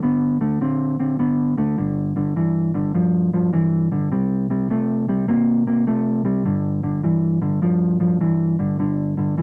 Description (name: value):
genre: blues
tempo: 103 BPM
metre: 4/4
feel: swing 65% on 8ths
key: G mixolydian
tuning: A4 = 441 Hz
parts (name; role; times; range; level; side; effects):
- mellow electric guitar; solo; 0.0-9.4 s; G2 to C4; -20 LUFS; equal; none
room: moderate small room reverb, RT60 0.5 s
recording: none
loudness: -20 LUFS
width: mono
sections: 0.0-1.8 A section; 1.8-9.4 B section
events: none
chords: 0.0 D5; 1.8 G5; 4.1 C5; 6.5 G5